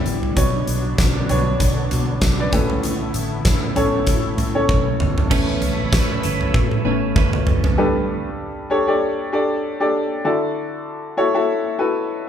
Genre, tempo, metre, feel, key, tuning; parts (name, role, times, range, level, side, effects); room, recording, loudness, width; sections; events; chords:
piano-driven pop; 97 BPM; 4/4; swing 56% on 16ths; A4 = 442 Hz
warm upright piano; accompaniment; 0.0-12.3 s; G2 to E5; -21 LUFS; left 1 dB
lush unison pad; sustained chords; 0.0-7.8 s; D3 to B5; -28 LUFS; equal; chorus, phaser
vintage muted fingered electric bass; bass; 0.1-7.7 s; F#1 to B2; -24 LUFS; equal
huge arena drum kit; drums; 0.1-7.8 s; crash cymbal, hi-hat, kick drum, snare drum, toms; -20 LUFS; equal
direct-recorded clean electric guitar; riff; 5.3-8.3 s; A2 to B4; -25 LUFS; right 7 dB; spring reverb
light reverb; band playing live in one room; -17 LUFS; side -9 dB against mid
0.0-5.3 A section; 5.3-7.8 B section; 7.8-12.3 C section
drum fill 4.7-5.3, 6.5-7.8
0.4 Bmadd9; 2.5 Aadd9; 7.8 Gadd9; 10.3 Dadd9